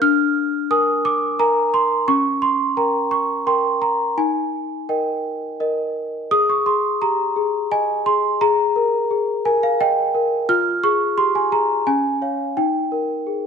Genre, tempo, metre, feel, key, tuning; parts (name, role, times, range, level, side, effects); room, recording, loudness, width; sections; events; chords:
classical, lullaby for celesta; 86 BPM; 3/4; straight; Ab major; A4 = 439 Hz
celesta; solo; 0.0-13.5 s; Db4 to F6; -17 LUFS; equal
moderate scoring stage reverb, RT60 1.6 s; dark, warm production; -17 LUFS; side -6 dB against mid
0.0-6.3 A section; 6.3-13.5 B section
0.0 Bb7/D; 2.1 Bbm69/Db; 4.2 Eb; 6.3 Ab5; 8.4 Eb/Ab; 10.5 Fm; 11.9 Db; 12.6 Eb